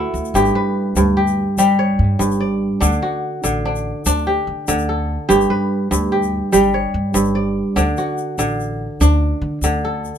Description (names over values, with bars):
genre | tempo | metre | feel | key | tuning
west african traditional, West African string and xylophone music | 97 BPM (dotted quarters) | 12/8 | straight | G lydian | A4 = 443 Hz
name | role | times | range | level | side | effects
kora | arpeggios | 0.0-10.2 s | G2 to D5 | -17 LUFS | equal | none
upright bass | bass | 0.0-10.1 s | G1 to D3 | -21 LUFS | equal | none
egg shaker | percussion | 0.1-10.2 s | none | -27 LUFS | left 6 dB | none
room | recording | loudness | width
light reverb | minimal, uncompressed stereo recording | -15 LUFS | side -8 dB against mid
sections
0.4-10.2 A section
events
none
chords
0.4 G; 2.8 D; 5.3 G; 7.8 D